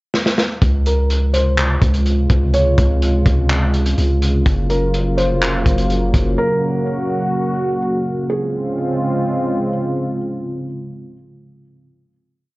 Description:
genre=hip hop, atmospheric cloud-rap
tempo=125 BPM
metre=4/4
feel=half-time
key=Db major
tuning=A4 = 440 Hz
part: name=crunchy breakbeat drum kit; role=drums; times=0.1-6.2 s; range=handclaps, hi-hat, kick drum, snare drum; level=-18 LUFS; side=equal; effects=none
part: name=dark analog pad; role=sustained chords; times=0.6-11.9 s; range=C3 to Gb4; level=-20 LUFS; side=equal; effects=chorus, sidechain pumping
part: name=long sustained 808-style bass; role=bass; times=0.6-6.4 s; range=F1 to Db2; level=-17 LUFS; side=equal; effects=none
part: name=felt-muted upright piano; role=melody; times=0.9-9.7 s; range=Ab4 to Db5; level=-23 LUFS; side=equal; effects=low-pass filter, tape echo
room=light reverb, small room reverb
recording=worn, warbling old tape, cassette tape, warbly pitch drift, nothing above 7.8 kHz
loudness=-15 LUFS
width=side -21 dB against mid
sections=0.0-0.6 pickup bar; 0.6-8.3 verse; 8.3-12.1 final chord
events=drum fill 0.1-0.6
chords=0.0 N.C.; 0.6 Dbmaj7; 4.5 Gbmaj7; 8.3 Dbmaj7

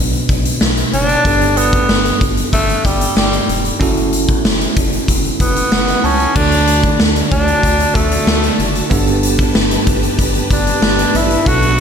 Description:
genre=1980s-style pop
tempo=94 BPM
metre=4/4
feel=straight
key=unclear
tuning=A4 = 439 Hz
part: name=bell-like tine electric piano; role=accompaniment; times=0.0-11.8 s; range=G2 to A5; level=-19 LUFS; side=right 3 dB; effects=fast stereo tremolo
part: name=rubbery square bass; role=bass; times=0.0-11.8 s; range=E1 to D2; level=-21 LUFS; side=equal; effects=none
part: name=big rock drum kit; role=drums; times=0.1-11.8 s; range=crash cymbal, hi-hat, kick drum, snare drum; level=-15 LUFS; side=equal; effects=none
part: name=breathy tenor saxophone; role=melody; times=0.9-11.8 s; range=G3 to F#4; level=-16 LUFS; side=equal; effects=none
part: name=string machine, violas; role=sustained chords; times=6.4-11.8 s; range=F#4 to B5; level=-24 LUFS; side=equal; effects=ensemble chorus
room=moderate scoring stage reverb, RT60 1.6 s, small room ambience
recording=big arena sound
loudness=-12 LUFS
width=side -7 dB against mid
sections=0.0-6.4 A section; 6.4-11.8 B section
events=tine electric piano fill 5.4-6.4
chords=0.0 Bm; 1.3 Gadd9; 3.8 F#m7; 6.4 D; 8.9 Gadd9

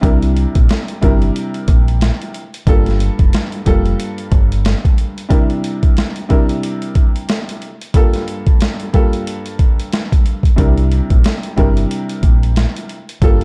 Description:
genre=hip hop, boom-bap hip-hop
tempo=91 BPM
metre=4/4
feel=swing 60% on 16ths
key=unclear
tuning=A4 = 440 Hz
part: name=dark grand piano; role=accompaniment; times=0.0-13.4 s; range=G2 to Bb4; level=-23 LUFS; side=equal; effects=high-pass filter, low-pass filter
part: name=deep dub fingered electric bass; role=bass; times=0.0-4.7, 10.6-13.4 s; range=F1 to C2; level=-17 LUFS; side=equal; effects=none
part: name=boom bap sampler-style drum kit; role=drums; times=0.0-13.4 s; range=hi-hat, kick drum, snare drum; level=-16 LUFS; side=equal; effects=none
room=little or no reverb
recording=dark, warm production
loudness=-15 LUFS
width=mono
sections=0.0-13.4 A section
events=none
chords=0.0 C7; 2.7 Gm9; 5.3 C7; 7.9 Gm9; 10.6 C7

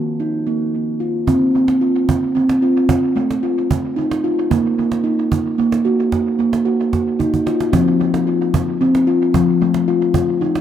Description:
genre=world meditative, meditative tuned percussion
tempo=112 BPM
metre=3/4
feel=straight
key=unclear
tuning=A4 = 440 Hz
part: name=steel tongue drum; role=arpeggios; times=0.0-10.6 s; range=Eb3 to Gb4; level=-15 LUFS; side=equal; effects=dub echo
part: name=cajon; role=percussion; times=1.3-10.6 s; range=none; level=-23 LUFS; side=right 4 dB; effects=dub echo
room=moderate spring reverb, RT60 2.1 s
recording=echo-heavy mix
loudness=-14 LUFS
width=side -10 dB against mid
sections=0.0-1.3 A section; 1.3-10.6 B section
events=drum fill 7.2-7.7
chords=0.0 Eb5; 1.3 F5; 4.5 Ebm; 7.7 F5

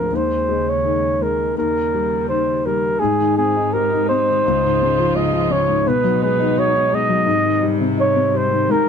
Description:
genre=acoustic folk-pop ballad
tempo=84 BPM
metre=4/4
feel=straight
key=Ab major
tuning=A4 = 439 Hz
part: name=breathy flugelhorn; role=melody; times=0.0-8.9 s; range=Ab4 to Eb5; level=-18 LUFS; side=right 1 dB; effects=none
part: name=warm grand piano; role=accompaniment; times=0.0-8.9 s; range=Db2 to G4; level=-20 LUFS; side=left 5 dB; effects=none
part: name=warm chamber string section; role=sustained chords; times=0.0-8.9 s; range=Eb2 to G4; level=-25 LUFS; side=right 4 dB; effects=none
room=light reverb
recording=dark, warm production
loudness=-15 LUFS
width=side -7 dB against mid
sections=0.0-3.0 A section; 3.0-8.9 B section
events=none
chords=0.1 Eb7sus4; 1.6 Eb7; 3.0 Abmaj7; 4.4 Dbmaj7; 5.9 B6; 7.3 Abmaj7

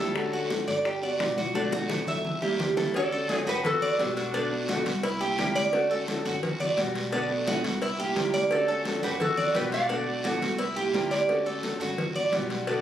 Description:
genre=latin, Cuban son and guajira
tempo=173 BPM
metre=4/4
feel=straight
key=D major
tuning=A4 = 440 Hz
part: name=fingerpicked steel-string acoustic guitar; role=accompaniment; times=0.0-12.8 s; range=B2 to G4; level=-31 LUFS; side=left 1 dB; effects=none
part: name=Cuban tres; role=arpeggios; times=0.0-12.8 s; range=D4 to E5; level=-28 LUFS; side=right 3 dB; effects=none
part: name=upright bass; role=bass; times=0.0-12.8 s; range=G1 to D2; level=-39 LUFS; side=equal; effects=none
part: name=bongos and cowbell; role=percussion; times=0.2-12.8 s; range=none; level=-37 LUFS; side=left 3 dB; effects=none
part: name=congas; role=percussion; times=0.2-12.8 s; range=none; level=-35 LUFS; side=equal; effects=none
part: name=guiro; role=percussion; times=0.2-12.8 s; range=none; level=-38 LUFS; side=right 1 dB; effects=none
part: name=clear trumpet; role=second line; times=2.9-4.8, 8.5-10.4 s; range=D4 to D5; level=-36 LUFS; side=right 1 dB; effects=none
part: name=nylon-string guitar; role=melody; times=3.0-4.8, 8.5-10.4 s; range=F#4 to F#5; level=-30 LUFS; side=left 2 dB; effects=none
room=wet large studio reverb, RT60 0.9 s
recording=recorded on a phone in the room, studio ambience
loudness=-25 LUFS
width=side -10 dB against mid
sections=0.0-2.9 A section; 2.9-12.8 B section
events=drum fill 1.6-2.9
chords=0.2 Dmaj7; 0.9 Gmaj7; 1.6 Bm7; 2.2 C7; 2.9 Dmaj7; 3.6 Gmaj7; 4.3 Bm7; 5.0 C7; 5.7 Dmaj7; 6.4 Gmaj7; 7.1 Bm7; 7.8 C7; 8.5 Dmaj7; 9.2 Gmaj7; 9.9 Bm7; 10.6 C7; 11.3 Dmaj7; 12.0 Gmaj7

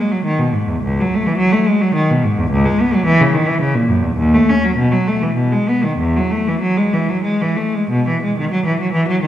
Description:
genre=classical, baroque-style suite movement for unaccompanied cello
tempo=88-112 BPM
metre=3/4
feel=rubato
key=E major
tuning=A4 = 440 Hz
part: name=clear cello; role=solo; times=0.0-9.3 s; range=C#2 to C#4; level=-14 LUFS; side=equal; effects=none
room=wet recital hall reverb, RT60 1.4 s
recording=heard from further back in the room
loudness=-14 LUFS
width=side -11 dB against mid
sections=0.0-7.9 A section; 7.9-9.3 A section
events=none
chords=none

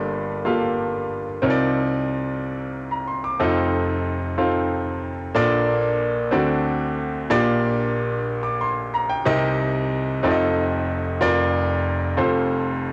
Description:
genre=gospel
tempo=62 BPM (dotted quarters)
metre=6/8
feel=straight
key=Bb major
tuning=A4 = 444 Hz
part: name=clear grand piano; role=solo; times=0.0-12.9 s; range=F1 to D6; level=-22 LUFS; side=equal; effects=none
room=light reverb, small room ambience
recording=home recording on cassette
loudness=-22 LUFS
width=mono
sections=0.0-5.3 A section; 5.3-12.9 B section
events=none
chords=0.0 Gm9; 1.4 Cm11; 3.4 F7; 5.3 Bbmaj7; 6.3 D7; 7.3 Gm7/Bb; 9.3 Cm7; 10.2 F7; 11.2 Bb/F; 12.2 F

